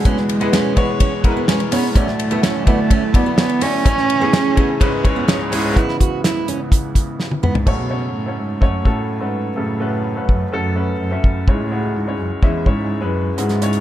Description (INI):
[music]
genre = piano-driven pop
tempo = 126 BPM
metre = 4/4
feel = straight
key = F# minor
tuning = A4 = 438 Hz
[part]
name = dark cello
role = melody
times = 0.0-13.8 s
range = E2 to C#4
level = -20 LUFS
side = right 2 dB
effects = none
[part]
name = bright upright piano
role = accompaniment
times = 0.0-13.8 s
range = C#2 to E5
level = -21 LUFS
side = left 2 dB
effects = none
[part]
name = airy breathy pad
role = sustained chords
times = 0.0-7.7 s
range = B2 to E4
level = -29 LUFS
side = equal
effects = chorus
[part]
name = fingerpicked steel-string acoustic guitar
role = riff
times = 0.1-7.5 s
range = B3 to F#4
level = -25 LUFS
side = right 6 dB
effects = none
[part]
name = damped 70s drum kit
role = drums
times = 0.1-13.8 s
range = crash cymbal, hi-hat, kick drum, ride cymbal, snare drum, toms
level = -16 LUFS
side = equal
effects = none
[sound]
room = light reverb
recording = none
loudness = -15 LUFS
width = side -12 dB against mid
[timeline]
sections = 0.0-5.8 A section; 5.8-7.7 B section; 7.7-13.8 C section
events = upright piano solo 5.8-7.7; drum fill 7.2-7.7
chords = 0.1 E; 2.0 Dadd9; 3.9 A; 4.8 C#m7; 7.7 F#m; 11.5 C#m